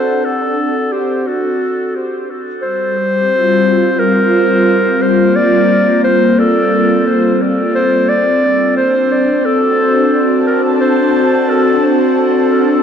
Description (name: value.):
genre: ambient.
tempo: 88 BPM.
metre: 4/4.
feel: swing 56% on 16ths.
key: G minor.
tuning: A4 = 440 Hz.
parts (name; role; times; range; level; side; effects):
mellow clarinet; melody; 0.0-12.8 s; F#4 to D5; -14 LUFS; equal; dub echo.
airy breathy pad; sustained chords; 0.0-12.8 s; G3 to A5; -13 LUFS; equal; chorus.
room: moderate echo chamber reverb, RT60 2.0 s.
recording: dark, warm production.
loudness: -10 LUFS.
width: side -8 dB against mid.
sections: 0.0-2.6 A section; 2.6-12.8 B section.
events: break 1.3-2.6.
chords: 0.0 D7; 2.6 Gm7; 8.1 D7.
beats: 0.58 1.26 1.94 | 2.62 3.31 3.99 4.67 | 5.35 6.03 6.71 7.40 | 8.08 8.76 9.44 10.12 | 10.81 11.49 12.17.